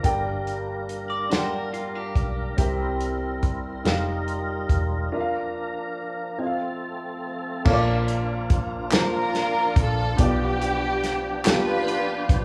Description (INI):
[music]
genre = slow gospel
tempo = 47 BPM (dotted quarters)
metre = 6/8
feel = straight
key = Bb major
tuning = A4 = 439 Hz
[part]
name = warm grand piano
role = accompaniment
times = 0.0-12.4 s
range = G2 to A5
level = -31 LUFS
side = equal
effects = none
[part]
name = tonewheel organ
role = sustained chords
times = 0.0-12.4 s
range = F3 to Bb4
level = -33 LUFS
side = equal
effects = slow rotary speaker, overdrive, chorus vibrato
[part]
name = fingered electric bass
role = bass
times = 0.0-12.4 s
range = E1 to C2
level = -31 LUFS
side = equal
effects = none
[part]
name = warm soul drum kit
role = drums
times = 0.0-12.4 s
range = crash cymbal, hi-hat, kick drum, snare drum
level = -26 LUFS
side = equal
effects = none
[part]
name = clean electric guitar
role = second line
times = 1.1-2.6 s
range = F4 to D5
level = -34 LUFS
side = equal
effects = none
[part]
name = warm studio string section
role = melody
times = 8.9-12.4 s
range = D4 to B4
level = -27 LUFS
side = equal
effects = none
[part]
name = group handclap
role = percussion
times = 8.9-11.8 s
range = none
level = -35 LUFS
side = equal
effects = none
[sound]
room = moderate large studio reverb, RT60 1.2 s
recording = band playing live in one room, small room ambience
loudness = -25 LUFS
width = mono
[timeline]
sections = 0.0-7.7 A section; 7.7-12.4 B section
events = break 5.1-7.7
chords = 0.0 Gm; 2.6 C7; 3.8 F9sus4; 5.1 Bb/F; 6.4 F; 7.7 Bbmaj7; 10.2 G7/B